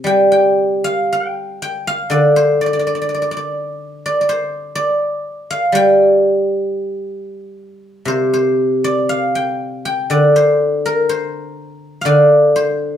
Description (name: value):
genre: chinese traditional, Chinese solo plucked strings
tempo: 57-64 BPM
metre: 2/4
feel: rubato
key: G yu mode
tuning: A4 = 442 Hz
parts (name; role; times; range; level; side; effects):
- guzheng; solo; 0.0-13.0 s; C3 to G5; -14 LUFS; equal; none
room: wet studio reverb, RT60 0.7 s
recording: band playing live in one room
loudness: -13 LUFS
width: side -9 dB against mid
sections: 0.0-8.1 A section; 8.1-13.0 B section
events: none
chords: none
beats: | 0.07 1.10 | 2.10 3.07 | 4.03 5.00 | 5.99 7.03 | 8.07 9.10 | 10.12 11.10 | 12.06